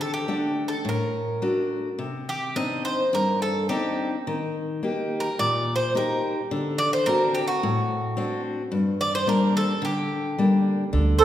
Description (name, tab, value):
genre	greek folk, Greek bouzouki band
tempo	107 BPM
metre	4/4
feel	straight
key	G harmonic minor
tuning	A4 = 440 Hz
part	Greek bouzouki	melody	0.0-11.2 s	F#4 to Eb5	-26 LUFS	right 1 dB	none
part	picked steel-string acoustic guitar	accompaniment	0.0-11.2 s	G2 to F#5	-25 LUFS	left 2 dB	none
part	upright bass	bass	10.9-11.2 s	D2	-20 LUFS	right 1 dB	none
part	accordion	second line	11.2 s	A4	-12 LUFS	right 7 dB	none
room	wet recital hall reverb, RT60 1.8 s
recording	recorded in a church or concert hall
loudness	-22 LUFS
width	side -11 dB against mid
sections	0.0-10.9 A section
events	speeding up 0.0-11.2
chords	0.0 D; 2.0 Cmadd9; 4.3 Eb; 6.5 D7; 8.7 Gm